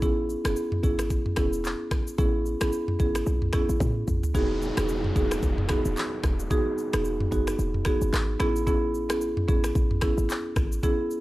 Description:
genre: afrobeats.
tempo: 111 BPM.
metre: 4/4.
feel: swing 58% on 16ths.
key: E major.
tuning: A4 = 445 Hz.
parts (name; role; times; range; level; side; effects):
marimba with medium mallets; accompaniment; 0.0-11.0 s; B3 to G#4; -27 LUFS; right 1 dB; none.
short 808-style bass; bass; 0.0-10.8 s; D#1 to A2; -29 LUFS; equal; none.
afro-pop drum kit; drums; 0.0-11.2 s; finger snaps, handclaps, kick drum, rim click, shaker, toms; -27 LUFS; equal; none.
downlifter; sound effects; 4.3-8.7 s; none; -37 LUFS; equal; none.
room: little or no reverb.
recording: dry, gritty hardware recording.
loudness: -23 LUFS.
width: side -17 dB against mid.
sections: 0.0-4.3 A section; 4.3-11.2 B section.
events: drum fill 3.8-4.3.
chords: 0.0 Amaj7; 4.3 Emaj7; 8.4 Amaj7.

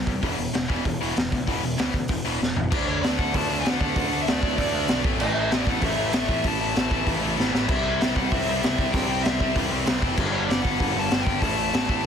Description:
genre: punk rock.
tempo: 193 BPM.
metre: 4/4.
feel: straight.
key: unclear.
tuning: A4 = 437 Hz.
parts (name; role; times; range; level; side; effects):
sludgy distorted guitar; riff; 0.0-12.1 s; E2 to D4; -30 LUFS; right 15 dB; overdrive.
tight distorted guitar; riff; 0.0-12.1 s; E2 to D4; -28 LUFS; left 17 dB; distortion.
overdriven picked electric bass; bass; 0.0-12.0 s; E1 to E2; -31 LUFS; equal; none.
raw garage drum kit; drums; 0.1-12.0 s; crash cymbal, hi-hat, kick drum, snare drum, toms; -25 LUFS; equal; none.
dark smooth lead guitar; melody; 2.9-12.1 s; C#5 to A5; -29 LUFS; left 1 dB; overdrive, ping-pong delay.
room: light reverb.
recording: dense, heavily limited modern master.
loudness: -21 LUFS.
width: side -7 dB against mid.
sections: 0.0-2.7 A section; 2.7-12.1 B section.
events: drum fill 2.4-2.7, 7.4-7.7.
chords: 0.2 E5; 2.7 D; 5.0 A5; 7.7 C; 10.2 G5; 11.4 A5.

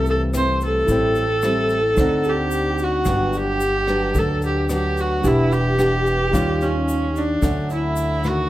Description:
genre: bossa nova.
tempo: 110 BPM.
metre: 4/4.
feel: straight.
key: D major.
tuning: A4 = 440 Hz.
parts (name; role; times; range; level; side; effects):
clear viola; melody; 0.0-8.5 s; Db4 to C5; -22 LUFS; right 2 dB; none.
reedy wooden-headed alto flute; second line; 0.0-8.5 s; Db4 to C5; -27 LUFS; left 3 dB; none.
bell-like tine electric piano; accompaniment; 0.0-8.5 s; D4 to G5; -29 LUFS; right 3 dB; medium stereo tremolo.
nylon-string guitar; accompaniment; 0.0-8.5 s; G2 to G4; -24 LUFS; left 1 dB; none.
upright bass; bass; 0.0-8.5 s; E1 to Eb2; -24 LUFS; equal; none.
vintage brush drum kit; drums; 0.1-8.4 s; hi-hat, kick drum, rim click; -28 LUFS; equal; none.
tube shaker; percussion; 0.1-8.5 s; none; -39 LUFS; left 9 dB; none.
room: moderate large studio reverb, RT60 0.9 s.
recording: none.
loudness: -17 LUFS.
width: side -15 dB against mid.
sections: 0.0-8.5 A section.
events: none.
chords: 0.0 Fmaj7; 0.9 Am7; 2.0 D7b9; 3.1 Gmaj7; 5.2 Em7; 6.3 Eb9; 7.4 Dmaj7.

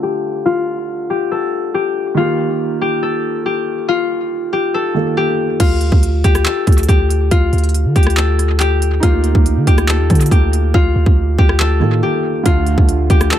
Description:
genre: hip hop, trap.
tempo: 140 BPM.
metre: 4/4.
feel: half-time.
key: D phrygian.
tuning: A4 = 440 Hz.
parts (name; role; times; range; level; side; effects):
concert harp; melody; 0.0-13.4 s; F4 to A4; -17 LUFS; left 4 dB; low-pass filter, analog delay.
felt-muted upright piano; accompaniment; 0.0-5.6, 9.0-13.4 s; D3 to A4; -22 LUFS; right 6 dB; low-pass filter, analog delay.
long sustained 808-style bass; bass; 5.6-13.3 s; D2 to D3; -14 LUFS; equal; none.
trap drum kit; drums; 5.6-13.4 s; crash cymbal, handclaps, hi-hat, kick drum, rim click; -14 LUFS; right 1 dB; overdrive.
room: small room ambience.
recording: echo-heavy mix.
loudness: -12 LUFS.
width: side -11 dB against mid.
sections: 0.0-5.6 A section; 5.6-13.4 B section.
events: filter sweep 0.0-5.6; hi-hats muted 10.7-12.5.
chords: 0.0 Dm; 2.2 Eb; 5.6 Dm; 9.0 Eb/D; 12.5 Dm.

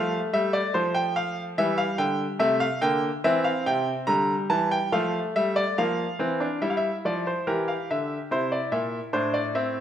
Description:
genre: classical, baroque-style 3-part fugue for grand piano.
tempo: 72 BPM.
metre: 4/4.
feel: straight.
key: unclear.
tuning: A4 = 440 Hz.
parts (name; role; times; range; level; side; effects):
bright grand piano; solo; 0.0-9.8 s; A2 to Bb5; -23 LUFS; equal; none.
room: moderate recital hall reverb, RT60 1.5 s.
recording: none.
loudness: -23 LUFS.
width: side -10 dB against mid.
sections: 0.0-6.6 A section; 6.6-9.8 B section.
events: none.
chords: 0.0 F; 1.6 C7; 4.9 F; 6.6 Edim; 8.3 Am.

